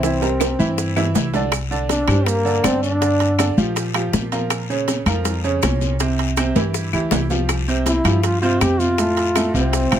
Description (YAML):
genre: latin, salsa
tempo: 161 BPM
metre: 4/4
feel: straight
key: unclear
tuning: A4 = 440 Hz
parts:
  - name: warm trombone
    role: melody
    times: 0.0-3.5, 7.9-10.0 s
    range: Bb3 to G4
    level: -20 LUFS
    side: left 1 dB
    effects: plate reverb
  - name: bright upright piano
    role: accompaniment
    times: 0.0-10.0 s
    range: A2 to E5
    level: -22 LUFS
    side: right 3 dB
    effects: none
  - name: upright bass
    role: bass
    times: 0.0-10.0 s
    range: A1 to Bb2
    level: -21 LUFS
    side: equal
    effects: none
  - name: bongos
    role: percussion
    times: 0.0-10.0 s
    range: none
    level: -26 LUFS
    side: left 12 dB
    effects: none
  - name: congas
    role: percussion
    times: 0.0-10.0 s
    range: none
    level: -28 LUFS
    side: left 2 dB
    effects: none
  - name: guiro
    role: percussion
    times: 0.0-10.0 s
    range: none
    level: -32 LUFS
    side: left 9 dB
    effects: none
  - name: maracas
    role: percussion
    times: 0.0-10.0 s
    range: none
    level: -32 LUFS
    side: right 11 dB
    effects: none
  - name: timbales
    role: percussion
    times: 0.0-10.0 s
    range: none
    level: -26 LUFS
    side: right 9 dB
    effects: none
  - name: claves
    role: percussion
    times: 0.4-10.0 s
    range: none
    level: -28 LUFS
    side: left 12 dB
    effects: none
room: light reverb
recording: close, detailed microphones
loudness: -16 LUFS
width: side -10 dB against mid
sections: 0.0-1.5 A section; 1.5-10.0 B section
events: drum fill 0.0-1.5, 6.6-7.5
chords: 0.0 C7; 1.5 Csus2; 3.0 Gm7; 4.5 Bbm; 6.0 C; 7.5 Csus4; 9.0 F